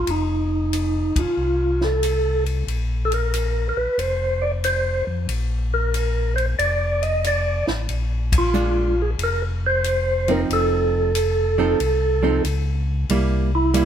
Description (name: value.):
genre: soul jazz organ trio.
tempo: 92 BPM.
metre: 4/4.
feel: swing 67% on 8ths.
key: unclear.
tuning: A4 = 440 Hz.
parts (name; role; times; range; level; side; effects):
percussive tonewheel organ; melody; 0.0-13.8 s; Eb4 to Eb5; -21 LUFS; right 1 dB; fast rotary speaker.
mellow tonewheel organ; bass; 0.0-13.8 s; F1 to F2; -23 LUFS; left 1 dB; chorus vibrato, slow rotary speaker.
compact cocktail drum kit; drums; 0.1-13.8 s; hi-hat, kick drum, ride cymbal, snare drum; -30 LUFS; left 1 dB; none.
archtop guitar, miked and amplified; accompaniment; 8.5-13.8 s; F3 to A4; -23 LUFS; right 4 dB; none.
room: light reverb.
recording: minimal, uncompressed stereo recording.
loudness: -19 LUFS.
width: side -9 dB against mid.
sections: 0.0-13.8 A section.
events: band accent 1.1-1.4, 8.2-8.5.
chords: 0.0 F7; 2.7 Bb5; 10.5 F7; 13.1 C7.